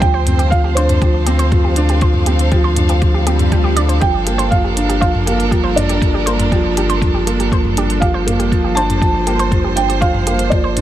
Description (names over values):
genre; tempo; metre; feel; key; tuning
piano and strings electronica; 120 BPM; 4/4; straight; G minor; A4 = 443 Hz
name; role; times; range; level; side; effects
felt-muted upright piano; melody; 0.0-10.8 s; C5 to A5; -21 LUFS; right 3 dB; none
warm studio string section; sustained chords; 0.0-10.8 s; G3 to F5; -23 LUFS; right 1 dB; sidechain pumping
analog pluck; arpeggios; 0.0-10.7 s; G4 to G5; -25 LUFS; right 2 dB; chorus, sidechain pumping, digital delay
warm upright piano; riff; 0.0-10.8 s; F3 to D4; -19 LUFS; right 1 dB; digital delay
warm sub bass; bass; 0.0-10.8 s; G1 to D2; -18 LUFS; equal; sidechain pumping
electronic kick drum; drums; 0.0-10.6 s; none; -16 LUFS; equal; none
minimal click drum kit; drums; 0.0-10.8 s; hi-hat, toms; -22 LUFS; equal; overdrive
swell; sound effects; 3.2-4.0 s; none; -25 LUFS; left 1 dB; none
room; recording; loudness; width
light reverb, small room ambience; none; -12 LUFS; side -12 dB against mid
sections
0.0-10.8 A section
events
swell 3.2-4.0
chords
0.0 Dm7; 4.0 Gm7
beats
| 0.02 0.52 1.02 1.52 | 2.02 2.52 3.02 3.52 | 4.02 4.52 5.02 5.52 | 6.02 6.52 7.02 7.52 | 8.02 8.52 9.02 9.52 | 10.02 10.52